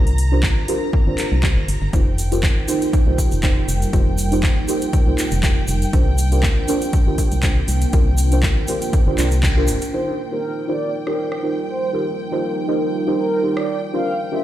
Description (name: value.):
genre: deep house.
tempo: 120 BPM.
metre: 4/4.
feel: swing 54% on 16ths.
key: unclear.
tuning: A4 = 436 Hz.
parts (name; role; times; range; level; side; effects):
deep mellow chord stab; stabs; 0.0-14.4 s; D4 to C5; -23 LUFS; right 1 dB; chorus, phaser, sidechain pumping, tape echo.
organ-like FM bass; bass; 0.0-9.8 s; F1 to C2; -19 LUFS; equal; sidechain pumping.
warm studio violin section; texture; 0.0-14.4 s; G5 to Bb5; -33 LUFS; equal; sidechain pumping.
house drum kit; drums; 0.1-13.7 s; handclaps, hi-hat, rim click; -27 LUFS; equal; overdrive.
electronic kick drum; drums; 0.4-9.5 s; none; -18 LUFS; equal; none.
deep dark ambient pad; sustained chords; 2.8-14.4 s; G3 to C5; -29 LUFS; right 1 dB; chorus, built-in reverb, sidechain pumping.
tube shaker; percussion; 1.9-9.9 s; none; -32 LUFS; right 1 dB; none.
mellow horn-like synth lead; melody; 9.9-14.4 s; Bb4 to F5; -25 LUFS; right 1 dB; lush chorus, ping-pong delay.
room: light reverb, digital ambience.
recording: played on a big sound system in a bare room, large studio reverb.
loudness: -16 LUFS.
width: side -13 dB against mid.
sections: 0.0-9.9 A section; 9.9-14.4 B section.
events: filter sweep on synth stab 0.0-9.9; band accent 9.4.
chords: 0.0 C9sus4; 1.9 F9sus4; 5.9 C9sus4; 9.9 F9sus4; 13.9 C9sus4.